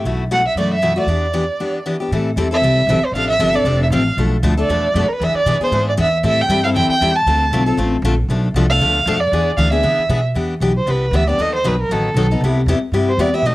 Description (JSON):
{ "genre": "acoustic string swing (jazz manouche)", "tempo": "233 BPM", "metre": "4/4", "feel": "swing 55% on 8ths", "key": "A minor, E minor from 10.4 s", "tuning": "A4 = 438 Hz", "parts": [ { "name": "picked steel-string acoustic guitar", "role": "accompaniment", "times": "0.0-13.5 s", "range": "B2 to A4", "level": "-19 LUFS", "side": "left 2 dB", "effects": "cassette tape" }, { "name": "upright bass", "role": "bass", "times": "0.0-13.5 s", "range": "F1 to D3", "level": "-19 LUFS", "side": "equal", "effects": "none" }, { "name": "warm violin", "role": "melody", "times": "0.3-13.5 s", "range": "A4 to A5", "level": "-18 LUFS", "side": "right 2 dB", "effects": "plate reverb" } ], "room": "light reverb", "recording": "home recording on cassette", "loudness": "-14 LUFS", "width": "side -17 dB against mid", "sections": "0.0-2.1 A section; 2.1-10.4 B section; 10.4-13.5 C section", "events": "break 1.6-2.1; violin solo 10.4-13.5", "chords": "0.0 B7sus4; 1.1 Em7; 2.1 Am7; 3.1 Dm7; 4.2 Bm7b5; 5.2 E7; 6.2 Am7; 7.3 Dm7; 8.3 Bm7b5; 9.3 E7; 10.4 Em7; 11.4 B7; 12.4 Cmaj7" }